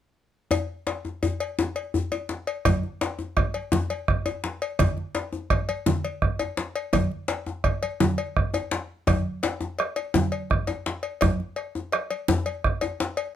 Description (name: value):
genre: west african traditional, West African drum ensemble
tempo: 112 BPM (dotted quarters)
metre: 12/8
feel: straight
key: none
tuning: none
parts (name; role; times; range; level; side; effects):
- cowbell; percussion; 0.5-13.3 s; none; -30 LUFS; left 6 dB; none
- djembe; percussion; 0.5-13.2 s; none; -26 LUFS; left 3 dB; none
- bombo; percussion; 2.7-12.8 s; none; -24 LUFS; right 2 dB; none
- congas; percussion; 2.7-13.1 s; none; -28 LUFS; right 6 dB; none
room: light reverb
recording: close, detailed microphones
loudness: -24 LUFS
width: side -10 dB against mid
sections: 0.5-2.7 A section; 2.7-13.4 B section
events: none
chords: none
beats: | 0.51 1.05 1.58 2.12 | 2.66 3.19 3.73 4.26 | 4.80 5.33 5.87 6.41 | 6.94 7.47 8.01 8.55 | 9.08 9.62 10.15 10.69 | 11.22 11.75 12.29 12.82